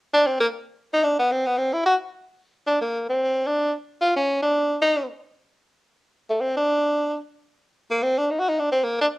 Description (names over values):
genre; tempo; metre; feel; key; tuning
jazz; 224 BPM; 4/4; swing 59% on 8ths; unclear; A4 = 439 Hz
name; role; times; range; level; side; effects
clear tenor saxophone; solo; 0.1-9.1 s; A3 to F#4; -20 LUFS; equal; none
room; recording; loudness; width
light reverb; worn, warbling old tape, cassette tape, warbly pitch drift; -20 LUFS; side -20 dB against mid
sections
0.0-2.4 A section; 2.4-9.2 B section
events
none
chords
none